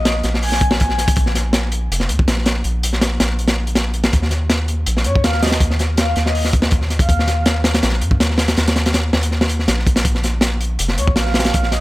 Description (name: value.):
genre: drum and bass, jungle.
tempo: 162 BPM.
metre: 4/4.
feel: straight.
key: Bb dorian.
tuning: A4 = 440 Hz.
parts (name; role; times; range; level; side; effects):
breathy flute-like synth lead; melody; 0.0-1.1, 5.1-7.5, 11.0-11.8 s; Db5 to Ab5; -24 LUFS; equal; lush chorus, dub echo.
soft dub sub bass; bass; 0.0-11.8 s; F1 to G2; -19 LUFS; equal; none.
crunchy breakbeat drum kit; drums; 0.1-11.8 s; hi-hat, kick drum, snare drum; -16 LUFS; equal; none.
room: small room ambience.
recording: none.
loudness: -14 LUFS.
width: side -18 dB against mid.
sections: 0.0-11.8 A section.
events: none.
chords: 0.0 Bb5; 4.1 Eb5; 10.1 Bb5.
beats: 0.05 0.42 0.80 | 1.17 1.54 1.91 2.28 | 2.65 3.02 3.39 3.76 | 4.13 4.50 4.87 5.24 | 5.61 5.98 6.35 6.72 | 7.09 7.46 7.83 8.20 | 8.57 8.94 9.31 9.68 | 10.05 10.43 10.79 11.16 | 11.54.